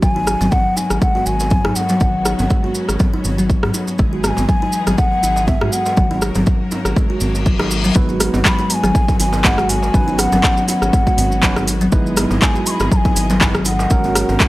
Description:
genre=afro house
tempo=121 BPM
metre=4/4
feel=swing 55% on 16ths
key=G# minor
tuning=A4 = 440 Hz
part: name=breathy hollow bansuri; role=melody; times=0.0-14.5 s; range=E5 to C#6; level=-21 LUFS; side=left 1 dB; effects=none
part: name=bright symphonic string section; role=sustained chords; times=0.0-14.5 s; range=C#3 to D#5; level=-30 LUFS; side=left 1 dB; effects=sidechain pumping
part: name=kalimba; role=arpeggios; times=0.0-14.5 s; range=F#3 to F#4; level=-21 LUFS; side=equal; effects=sidechain pumping
part: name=round analog bass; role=bass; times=0.0-14.4 s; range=G#1 to G#2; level=-22 LUFS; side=equal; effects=sidechain pumping
part: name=electronic kick drum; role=drums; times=0.0-14.5 s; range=none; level=-16 LUFS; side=equal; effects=overdrive
part: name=maracas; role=percussion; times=0.0-14.5 s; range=none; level=-27 LUFS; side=right 2 dB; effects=none
part: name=djembe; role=percussion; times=0.2-14.4 s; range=none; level=-26 LUFS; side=right 1 dB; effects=none
part: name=deep house drum kit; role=drums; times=0.3-14.5 s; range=handclaps, hi-hat, rim click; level=-20 LUFS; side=equal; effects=overdrive
part: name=reverse cymbal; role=sound effects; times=7.2-8.0 s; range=none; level=-24 LUFS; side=left 5 dB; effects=none
part: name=bell-like tine electric piano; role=stabs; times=8.0-14.5 s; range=F#3 to B4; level=-24 LUFS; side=right 3 dB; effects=sidechain pumping
room=small room ambience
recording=dry, gritty hardware recording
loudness=-14 LUFS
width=side -18 dB against mid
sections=0.0-8.0 A section; 8.0-14.5 B section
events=reverse cymbal 7.2-8.0; drop 8.0-14.5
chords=0.0 G#m7; 2.0 Badd9/G#; 4.0 Emaj7/G#; 6.0 F#/G#; 8.0 G#m7; 9.9 Badd9/G#; 11.9 Emaj7/G#; 13.9 F#/G#

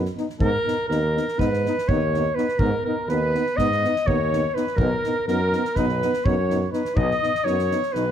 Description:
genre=balkan folk, Balkan brass band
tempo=247 BPM (eighths)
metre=9/8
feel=straight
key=unclear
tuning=A4 = 440 Hz
part: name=warm clarinet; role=melody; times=0.0-8.1 s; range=A#4 to D#5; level=-24 LUFS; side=left 2 dB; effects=none
part: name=warm trumpet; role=second line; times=0.0-8.1 s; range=A#4 to D#5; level=-30 LUFS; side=right 5 dB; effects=slapback echo
part: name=mellow euphonium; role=accompaniment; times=0.0-8.0 s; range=B3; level=-30 LUFS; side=right 6 dB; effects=none
part: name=warm trombone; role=accompaniment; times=0.0-8.1 s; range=D#4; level=-30 LUFS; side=left 7 dB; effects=none
part: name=clear tuba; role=bass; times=0.0-8.1 s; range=B1 to G#2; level=-26 LUFS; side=right 1 dB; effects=none
part: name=soft-mallet drum kit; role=percussion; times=0.1-8.0 s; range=kick drum, snare drum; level=-28 LUFS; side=equal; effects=none
room=light reverb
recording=none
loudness=-20 LUFS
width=side -9 dB against mid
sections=0.4-8.1 A section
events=none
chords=0.4 G#m; 4.8 B

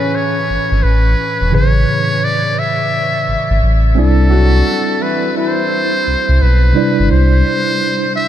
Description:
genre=R&B, neo-soul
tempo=86 BPM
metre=4/4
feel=swing 64% on 16ths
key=unclear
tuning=A4 = 441 Hz
part: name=trumpet with metal mute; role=melody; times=0.0-8.3 s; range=A4 to E5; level=-17 LUFS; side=equal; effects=none
part: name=tine electric piano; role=accompaniment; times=0.0-8.3 s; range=A2 to G#5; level=-17 LUFS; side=right 2 dB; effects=overdrive, fast stereo tremolo
part: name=mellow horn section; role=stabs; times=0.0-6.0 s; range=C#3 to F#4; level=-24 LUFS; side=left 5 dB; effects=tape echo
part: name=sub bass with octave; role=bass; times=0.5-7.4 s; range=E1 to C2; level=-11 LUFS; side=equal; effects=none
room=light reverb, small room ambience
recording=none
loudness=-11 LUFS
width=side -11 dB against mid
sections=0.0-8.3 A section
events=none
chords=0.0 Amaj9; 4.0 Cmaj9

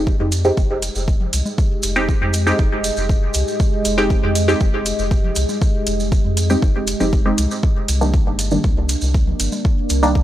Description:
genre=dub techno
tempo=119 BPM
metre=4/4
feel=straight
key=F minor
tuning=A4 = 442 Hz
part: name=deep dark ambient pad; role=sustained chords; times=0.8-10.2 s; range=Ab3 to Eb5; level=-24 LUFS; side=right 1 dB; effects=chorus, built-in reverb, sidechain pumping
part: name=filtered dub chord stab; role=stabs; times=0.0-10.2 s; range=Eb3 to G4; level=-20 LUFS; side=equal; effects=chorus, phaser, sidechain pumping, dub echo
part: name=soft dub sub bass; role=bass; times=0.0-10.2 s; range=F1 to F2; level=-21 LUFS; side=equal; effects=tube saturation, sidechain pumping
part: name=electronic kick drum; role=drums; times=0.1-10.2 s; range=none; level=-17 LUFS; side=equal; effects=none
part: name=maracas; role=percussion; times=0.1-10.2 s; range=none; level=-29 LUFS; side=right 3 dB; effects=none
part: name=electronic congas and toms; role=percussion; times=0.2-9.6 s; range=none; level=-32 LUFS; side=left 3 dB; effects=sidechain pumping on perc, sidechain pumping on toms, dub echo
part: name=electronic hi-hat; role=drums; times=0.3-10.0 s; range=none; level=-24 LUFS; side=equal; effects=none
room=digital ambience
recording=dry, gritty hardware recording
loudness=-16 LUFS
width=side -13 dB against mid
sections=0.0-10.2 A section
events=none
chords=0.0 Fm9; 7.6 Cm9

